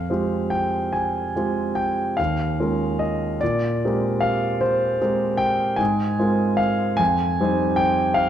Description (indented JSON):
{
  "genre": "classical, impressionist solo piano",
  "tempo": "46-53 BPM (dotted quarters)",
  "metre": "9/8",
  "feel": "rubato",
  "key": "F minor",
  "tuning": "A4 = 440 Hz",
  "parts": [
    { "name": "warm concert grand piano", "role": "solo", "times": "0.0-8.3 s", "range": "Eb2 to Ab5", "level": "-19 LUFS", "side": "equal", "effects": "none" }
  ],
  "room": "moderate recital hall reverb, RT60 1.4 s",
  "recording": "dark, warm production",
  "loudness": "-19 LUFS",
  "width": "side -10 dB against mid",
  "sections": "0.0-8.3 A section",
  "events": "none",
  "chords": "0.0 Fmadd9; 2.2 Eb9sus4; 3.4 Bb13; 5.8 Ab69; 7.0 Fm9",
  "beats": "0.93 2.19 | 3.41 4.62 5.80 | 7.00 8.18"
}